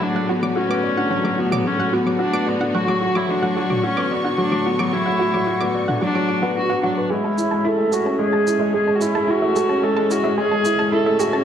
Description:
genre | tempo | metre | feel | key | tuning
piano and strings electronica | 110 BPM | 4/4 | straight | A major | A4 = 440 Hz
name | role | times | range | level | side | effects
rich viola | melody | 0.0-11.4 s | B3 to A4 | -22 LUFS | right 1 dB | low-pass filter
clear symphonic string section | sustained chords | 0.0-11.4 s | A2 to C#6 | -28 LUFS | left 1 dB | none
warm upright piano | riff | 0.0-11.4 s | F#3 to D5 | -20 LUFS | left 1 dB | none
analog pluck | arpeggios | 0.2-11.4 s | F#4 to D6 | -28 LUFS | right 4 dB | chorus, tape echo
electronic toms and shaker | drums | 1.5-11.3 s | none | -30 LUFS | right 2 dB | high-pass filter on toms, small room ambience, high-pass filter on perc
warm studio double bass section | bass | 7.1-11.4 s | none | barely audible | none | none
room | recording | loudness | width
wet recital hall reverb, RT60 1.5 s | none | -17 LUFS | side -9 dB against mid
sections
0.0-7.1 A section; 7.1-11.4 B section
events
build-up 7.1-11.4; filter sweep on synth arpeggio sound 7.1-11.4; filter sweep on viola 7.1-11.4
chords
0.0 Bm/A; 7.1 Amaj7

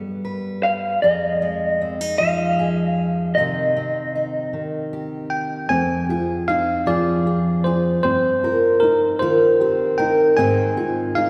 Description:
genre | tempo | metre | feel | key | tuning
acoustic folk duo or small band | 51 BPM (dotted quarters) | 6/8 | straight | unclear | A4 = 436 Hz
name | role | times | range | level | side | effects
fingerpicked steel-string acoustic guitar | accompaniment | 0.0-11.3 s | F2 to B4 | -23 LUFS | equal | none
electric guitar through a small old amp | melody | 0.6-5.3 s | Eb5 to F5 | -23 LUFS | equal | tremolo
bell-like tine electric piano | second line | 5.3-11.3 s | Bb4 to Ab5 | -24 LUFS | equal | none
felt-muted upright piano | arpeggios | 5.7-11.3 s | C4 to Ab4 | -26 LUFS | equal | none
room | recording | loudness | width
wet church reverb, RT60 3.3 s | recorded in a church or concert hall | -20 LUFS | mono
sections
0.0-5.7 A section; 5.7-11.3 B section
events
tine electric piano solo 5.7-11.3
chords
0.0 G; 1.0 Fm7; 3.4 Cm; 5.7 Fm; 8.0 Cm7/G; 10.4 Ab

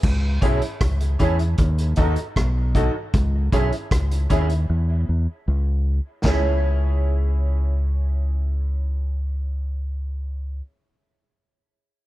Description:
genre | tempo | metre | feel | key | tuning
roots reggae | 77 BPM | 4/4 | straight | C# minor | A4 = 440 Hz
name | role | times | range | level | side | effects
deep dub fingered electric bass | bass | 0.0-10.6 s | B1 to E2 | -21 LUFS | equal | none
vintage drum kit | drums | 0.0-6.4 s | crash cymbal, hi-hat, kick drum, rim click, snare drum | -22 LUFS | equal | none
mellow electric guitar | accompaniment | 0.4-10.7 s | D#4 to E5 | -30 LUFS | right 2 dB | ensemble chorus, tape echo
bright upright piano | stabs | 0.4-10.6 s | C#4 to A4 | -30 LUFS | equal | none
room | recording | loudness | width
little or no reverb | dark, warm production | -19 LUFS | side -16 dB against mid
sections
0.0-6.2 A section; 6.2-9.3 B section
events
drums muted 4.7-6.2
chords
0.0 C#m; 1.6 D#dim; 3.1 C#m

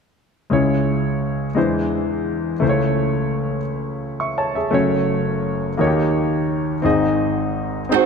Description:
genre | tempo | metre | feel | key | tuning
gospel | 57 BPM (dotted quarters) | 6/8 | straight | C# harmonic minor | A4 = 439 Hz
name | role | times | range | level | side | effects
clear grand piano | accompaniment | 0.5-8.1 s | F#1 to C#6 | -18 LUFS | left 1 dB | none
oud | melody | 7.9-8.1 s | B#3 to F#4 | -13 LUFS | right 11 dB | none
room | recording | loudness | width
moderate concert hall reverb, RT60 2.2 s | dark, warm production | -18 LUFS | side -5 dB against mid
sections
0.5-8.1 A section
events
none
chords
0.5 C#m; 1.6 Eaug7; 2.6 A/C#; 4.7 F#m; 5.8 D#7; 6.8 G#

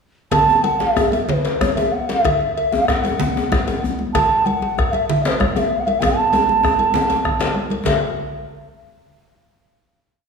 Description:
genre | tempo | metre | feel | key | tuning
west african traditional, West African drum ensemble | 127 BPM (dotted quarters) | 12/8 | uneven beats | A major pentatonic | A4 = 444 Hz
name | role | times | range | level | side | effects
mellow bass bansuri | melody | 0.3-8.0 s | B4 to A5 | -18 LUFS | right 2 dB | tape echo
bombo | percussion | 0.3-8.0 s | none | -25 LUFS | left 1 dB | none
congas | percussion | 0.3-8.0 s | none | -25 LUFS | right 2 dB | none
cowbell | percussion | 0.3-8.0 s | none | -31 LUFS | left 5 dB | none
djembe | percussion | 0.3-8.0 s | none | -29 LUFS | left 3 dB | none
djembe | percussion | 0.3-8.0 s | none | -23 LUFS | left 3 dB | none
room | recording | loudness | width
wet recital hall reverb, RT60 1.5 s | small room reverb | -16 LUFS | side -5 dB against mid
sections
0.3-7.9 A section; 7.9-9.6 final note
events
speeding up 0.3-9.6; drum fill 6.0-7.9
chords
none

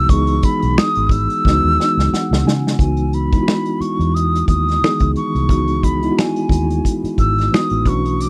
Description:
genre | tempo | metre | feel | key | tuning
R&B, neo-soul | 89 BPM | 4/4 | swing 56% on 16ths | C# minor | A4 = 440 Hz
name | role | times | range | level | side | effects
concert flute | melody | 0.0-8.3 s | G#5 to E6 | -23 LUFS | equal | tape echo
mellow tine electric piano | accompaniment | 0.0-8.3 s | D#3 to G#5 | -22 LUFS | equal | none
vintage muted fingered electric bass | bass | 0.0-8.3 s | G#1 to C#3 | -21 LUFS | equal | none
unplugged drum kit | drums | 0.1-8.3 s | finger snaps, hi-hat, kick drum, snare drum | -19 LUFS | equal | none
room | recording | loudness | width
little or no reverb | dry, close 1970s-style studio recording | -17 LUFS | mono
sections
0.0-2.8 A section; 2.8-8.3 B section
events
drum fill 1.4-2.8; tine electric piano fill 1.8-2.8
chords
0.0 C#m11

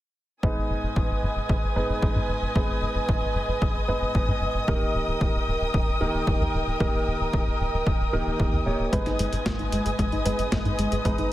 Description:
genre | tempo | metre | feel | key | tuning
italo disco | 113 BPM | 4/4 | straight | G# harmonic minor | A4 = 444 Hz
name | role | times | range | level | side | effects
dark studio string section | sustained chords | 0.4-11.3 s | A#4 to D#6 | -29 LUFS | equal | none
clear grand piano | stabs | 0.4-11.3 s | G#2 to C#5 | -30 LUFS | right 1 dB | low-pass filter
tight sequencer bass | bass | 0.4-11.3 s | D#1 to G#2 | -29 LUFS | equal | none
electronic kick drum | drums | 0.4-11.2 s | none | -26 LUFS | equal | none
soft round pluck | arpeggios | 8.9-11.3 s | G#3 to G#4 | -30 LUFS | left 1 dB | chorus, tape echo
clean 12-bit digital drum machine | drums | 8.9-11.3 s | hi-hat, snare drum | -33 LUFS | equal | none
room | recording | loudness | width
light reverb, digital ambience | none | -23 LUFS | side -14 dB against mid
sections
0.4-11.3 A section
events
filter sweep on analog synth bass 0.4-11.3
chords
0.4 G#m; 4.7 D#; 8.9 G#m

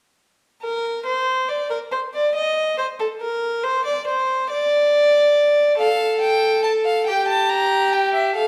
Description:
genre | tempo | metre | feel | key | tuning
classical, baroque-style fugue for string quartet | 47 BPM (dotted quarters) | 6/8 | straight | unclear | A4 = 440 Hz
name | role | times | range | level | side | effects
warm violin | second line | 0.6-8.5 s | G4 to Eb5 | -20 LUFS | equal | none
rich violin | melody | 5.8-8.5 s | E5 to Bb5 | -24 LUFS | equal | none
room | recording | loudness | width
wet recital hall reverb, RT60 1.3 s | none | -20 LUFS | mono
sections
0.6-8.5 A section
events
none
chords
0.6 N.C.; 5.8 F/A; 7.1 Edim/G (rootless)

